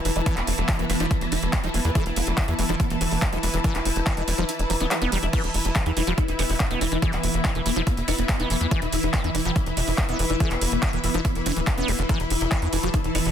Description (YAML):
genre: psychedelic trance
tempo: 142 BPM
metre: 4/4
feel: straight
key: unclear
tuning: A4 = 440 Hz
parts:
  - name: evolving wavetable pad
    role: sustained chords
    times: 0.0-13.3 s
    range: E3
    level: -32 LUFS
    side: right 1 dB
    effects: phaser, built-in reverb, sidechain pumping
  - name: rich studio string section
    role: texture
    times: 0.0-13.3 s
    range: E4 to A5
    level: -32 LUFS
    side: left 2 dB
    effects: sidechain pumping
  - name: swarming rave lead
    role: melody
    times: 0.1-13.3 s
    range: B3 to B4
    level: -30 LUFS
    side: left 1 dB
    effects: chorus, phaser, sidechain pumping, ping-pong delay
  - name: liquid acid bass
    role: riff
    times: 0.1-13.2 s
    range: D3 to E4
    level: -31 LUFS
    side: moving between left 3 dB and right 3 dB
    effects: chorus, auto-pan, sidechain pumping, ping-pong delay
  - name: tight sequencer bass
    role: bass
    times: 0.1-13.3 s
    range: D1 to E2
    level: -26 LUFS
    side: equal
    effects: none
  - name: big-room dance drum kit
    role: drums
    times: 0.1-13.3 s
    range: crash cymbal, handclaps, hi-hat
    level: -29 LUFS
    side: right 1 dB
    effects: none
  - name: metallic wobble bass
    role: second line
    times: 0.3-1.1, 6.4-8.6, 13.2-13.3 s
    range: A3 to B3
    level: -37 LUFS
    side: right 2 dB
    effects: analog chorus, sidechain pumping, high-pass filter, ping-pong delay
  - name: electronic kick drum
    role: drums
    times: 0.3-13.0 s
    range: none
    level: -24 LUFS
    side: equal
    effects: none
room: light reverb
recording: dense, heavily limited modern master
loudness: -21 LUFS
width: side -9 dB against mid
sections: 0.0-13.3 A section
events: kick drops out 4.5-5.3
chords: 0.0 E5